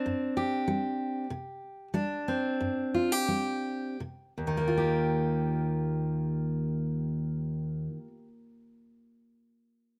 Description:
folk; 80-99 BPM; 4/4; straight; Eb major; A4 = 440 Hz
fingerpicked steel-string acoustic guitar; accompaniment; 0.0-8.3 s; Eb2 to G4; -31 LUFS; equal
studio ambience; rough home demo mix; -31 LUFS; mono
0.0-4.4 A section; 4.4-7.4 B section
slowing down 0.0-4.4
0.0 Csus2; 4.4 Ebadd9

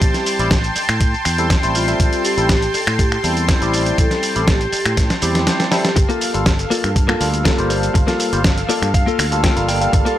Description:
nu-disco, nu disco; 121 BPM; 4/4; straight; A4 = 442 Hz
vibraphone with medium hard mallets; melody; 0.0-5.9 s; E4 to A4; -24 LUFS; left 1 dB; tape echo
barky tine electric piano; accompaniment; 0.0-10.2 s; G3 to E5; -23 LUFS; equal; phaser, sidechain pumping, tape echo
lush unison pad; sustained chords; 0.0-10.2 s; A4 to C6; -23 LUFS; equal; chorus, sidechain pumping
fingered electric bass; bass; 0.0-10.0 s; G1 to A2; -22 LUFS; equal; tube saturation
dusty soul sampler-style drum kit; drums; 0.0-10.2 s; finger snaps, hi-hat, shaker, snare drum; -20 LUFS; equal; studio reverb
electronic kick drum; drums; 0.0-10.0 s; -17 LUFS; equal; studio reverb
direct-recorded clean electric guitar; riff; 6.0-10.2 s; Bb3 to G5; -21 LUFS; left 3 dB; wide subtle chorus, tape echo
digital ambience; dry, gritty hardware recording; -14 LUFS; side -12 dB against mid
0.0-10.2 A section
drum fill 5.0-6.0; clean electric guitar fill 8.4-9.9
0.0 Am7; 6.0 Gm9

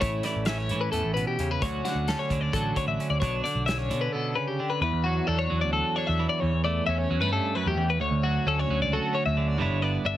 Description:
math rock and midwest emo; 263 BPM (eighths); 7/8; straight; D major; A4 = 437 Hz
twelve-string electric guitar; accompaniment; 0.0-10.2 s; D2 to A4; -29 LUFS; right 4 dB
twelve-string electric guitar; arpeggios; 0.0-10.2 s; F#4 to E5; -28 LUFS; left 5 dB
picked electric bass; bass; 0.0-10.2 s; G1 to B2; -29 LUFS; equal
loose indie drum kit; drums; 0.0-4.0 s; hi-hat, kick drum, snare drum; -33 LUFS; equal
little or no reverb; heavily compressed radio sound; -24 LUFS; side -13 dB against mid
0.0-4.8 A section; 4.8-10.2 B section
0.0 A9; 1.6 Dmaj7; 3.2 Bm9; 4.8 Esus2; 6.4 A7/E; 8.0 Dmaj7; 9.6 G6

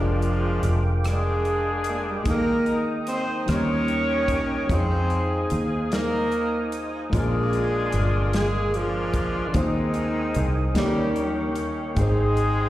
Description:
slow gospel; 49 BPM (dotted quarters); 6/8; straight; A4 = 439 Hz
breathy tenor saxophone; melody; 0.0-12.7 s; D3 to Db4; -28 LUFS; right 2 dB; slapback echo
mellow horn section; melody; 0.0-12.7 s; Ab3 to Db5; -28 LUFS; left 2 dB; slapback echo, tape echo
warm upright piano; accompaniment; 0.0-12.7 s; Ab2 to G5; -29 LUFS; left 2 dB
percussive tonewheel organ; sustained chords; 0.0-12.7 s; Ab4 to Eb6; -33 LUFS; equal; slow rotary speaker, chorus vibrato
fingered electric bass; bass; 0.0-12.7 s; F1 to F2; -25 LUFS; equal
modern studio drum kit; drums; 0.2-12.6 s; hi-hat, kick drum, rim click, snare drum; -30 LUFS; equal
light reverb, studio ambience; live gig heard through the venue's PA, recital hall reverb; -21 LUFS; side -14 dB against mid
0.0-12.7 A section
0.0 Bb7/F; 2.3 Ebsus4; 3.5 Eb; 4.7 Fm7; 7.1 Bb7; 9.5 Ab/Eb; 10.8 Eb7; 12.0 Abmaj7

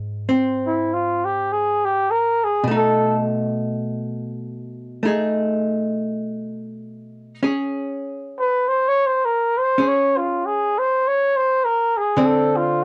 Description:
jazz ballad; 50 BPM; 4/4; swing 66% on 8ths; A4 = 440 Hz
archtop guitar, miked and amplified; accompaniment; 0.0-12.8 s; Ab2 to G#4; -24 LUFS; equal; cassette tape
trumpet with bucket mute; melody; 0.7-12.8 s; Fb4 to Db5; -20 LUFS; equal; cassette tape
little or no reverb; home recording on cassette; -21 LUFS; mono
0.0-12.8 A section
muted trumpet solo 0.0-12.8
0.0 Ab; 2.7 B6; 7.4 Dbmaj7(no3); 12.2 Dm7

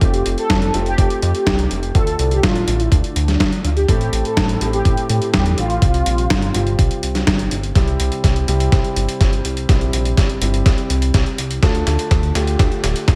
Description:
italo disco; 124 BPM; 4/4; straight; A4 = 441 Hz
mellow synth brass; melody; 0.0-7.2 s; D4 to A4; -25 LUFS; equal; chorus, phaser, tape echo
dark grand piano; stabs; 0.0-13.2 s; A2 to A4; -26 LUFS; equal; tape echo
chorused synth bass; bass; 0.0-13.2 s; D1 to A2; -22 LUFS; equal; tube saturation
dusty soul sampler-style drum kit; drums; 0.0-13.2 s; hi-hat, snare drum; -24 LUFS; equal; overdrive, high-pass filter on hats, high-pass filter on snare, high-pass filter on room, gated reverb
electronic kick drum; drums; 0.0-13.2 s; -18 LUFS; equal; overdrive
digital ambience; -17 LUFS; mono
0.0-7.8 A section; 7.8-13.2 B section
filter sweep on grand piano 0.0-7.8; drum fill 7.8-13.2
0.0 Fadd9; 1.9 Dm; 3.9 Am; 5.8 Csus4; 7.8 C; 11.6 Dm

